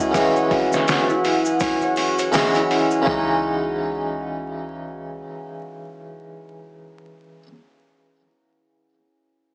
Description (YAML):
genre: trip hop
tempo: 82 BPM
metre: 4/4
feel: swing 59% on 16ths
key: C# minor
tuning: A4 = 436 Hz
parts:
  - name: harpsichord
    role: accompaniment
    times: 0.0-7.5 s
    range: C#3 to D#5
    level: -25 LUFS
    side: equal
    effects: tremolo, vintage 12-bit sampler grit, tape echo
  - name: deep dark ambient pad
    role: sustained chords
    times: 0.0-3.1 s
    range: F#4 to F#5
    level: -29 LUFS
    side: equal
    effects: chorus, built-in reverb
  - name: concert harp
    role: arpeggios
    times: 0.0-6.0 s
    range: C#4 to C#5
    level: -27 LUFS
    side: equal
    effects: low-pass filter, analog delay
  - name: soft 808-style bass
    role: bass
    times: 0.0-5.2 s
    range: C#2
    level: -40 LUFS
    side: equal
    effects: tube saturation
  - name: tube shaker and triangle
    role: percussion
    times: 0.0-3.0 s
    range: none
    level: -39 LUFS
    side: equal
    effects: none
  - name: trip hop sampler-style drum kit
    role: drums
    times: 0.1-3.3 s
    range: hi-hat, kick drum, snare drum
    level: -27 LUFS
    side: equal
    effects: overdrive, vintage 12-bit sampler grit
room: light reverb, digital ambience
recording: dry, gritty hardware recording, vinyl crackle, small speaker sound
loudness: -20 LUFS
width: mono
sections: 0.0-3.1 A section; 3.1-6.0 B section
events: none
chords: 0.0 C#madd9